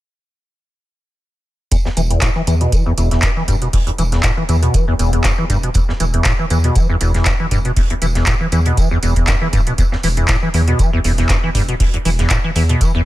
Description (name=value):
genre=acid house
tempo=119 BPM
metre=4/4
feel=swing 54% on 16ths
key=E minor pentatonic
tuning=A4 = 439 Hz
part: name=liquid acid bass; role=riff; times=1.7-13.0 s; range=E2 to E3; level=-18 LUFS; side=equal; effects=wide subtle chorus, sidechain pumping, dub echo
part: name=booming analog drum machine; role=drums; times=1.7-12.9 s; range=handclaps, hi-hat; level=-22 LUFS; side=right 1 dB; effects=overdrive
part: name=deep reggae drum kit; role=drums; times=1.7-12.9 s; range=hi-hat, snare drum, tambourine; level=-31 LUFS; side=right 3 dB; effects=high-pass filter on hats, high-pass filter on snare, high-pass filter on perc, high-pass filter on room
part: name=electronic kick drum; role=drums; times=1.7-12.9 s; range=none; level=-17 LUFS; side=equal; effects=none
part: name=round analog bass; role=bass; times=2.0-12.8 s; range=D1 to E2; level=-17 LUFS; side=equal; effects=tube saturation, sidechain pumping
room=small room ambience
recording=none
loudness=-13 LUFS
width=side -16 dB against mid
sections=1.7-13.1 A section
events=none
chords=none